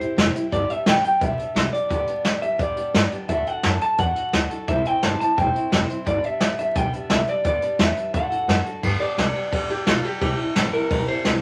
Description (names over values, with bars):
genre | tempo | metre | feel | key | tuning
rockabilly | 173 BPM | 4/4 | straight | G major | A4 = 440 Hz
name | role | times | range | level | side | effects
electric guitar through a small old amp | melody | 0.0-11.4 s | F4 to A5 | -26 LUFS | equal | none
picked steel-string acoustic guitar | accompaniment | 0.0-11.4 s | G2 to C5 | -33 LUFS | equal | none
upright bass | bass | 0.0-11.4 s | E1 to G2 | -30 LUFS | equal | none
jazz brush drum kit | drums | 0.0-11.3 s | crash cymbal, hi-hat, kick drum, ride cymbal, snare drum | -25 LUFS | equal | none
room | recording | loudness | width
moderate studio reverb, RT60 0.6 s | vinyl crackle | -22 LUFS | mono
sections
0.0-8.8 A section; 8.8-11.4 B section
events
clean electric guitar solo 8.8-11.4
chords
0.0 C; 0.5 G; 3.3 D; 4.7 C; 6.1 G; 8.1 D; 8.8 G; 10.2 C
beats
0.17 | 0.52 0.87 1.21 1.56 | 1.91 2.25 2.60 2.94 | 3.29 3.64 3.98 4.33 | 4.68 5.02 5.37 5.71 | 6.06 6.41 6.75 7.10 | 7.45 7.79 8.14 8.48 | 8.83 9.18 9.52 9.87 | 10.21 10.56 10.91 11.25